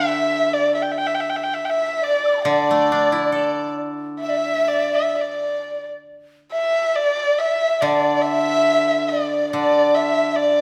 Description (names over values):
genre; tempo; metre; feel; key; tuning
chinese traditional, Chinese chamber ensemble; 69 BPM; 4/4; rubato; unclear; A4 = 440 Hz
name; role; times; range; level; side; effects
dark erhu; melody; 0.0-10.6 s; D5 to G5; -22 LUFS; equal; none
mellow hollow large dizi; second line; 0.0-10.6 s; D5 to E6; -25 LUFS; equal; none
steel-string zither; accompaniment; 0.0-10.6 s; D3 to A4; -26 LUFS; equal; none
room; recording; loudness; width
wet recital hall reverb, RT60 1.2 s; none; -20 LUFS; mono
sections
0.0-6.1 A section; 6.1-10.6 B section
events
none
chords
none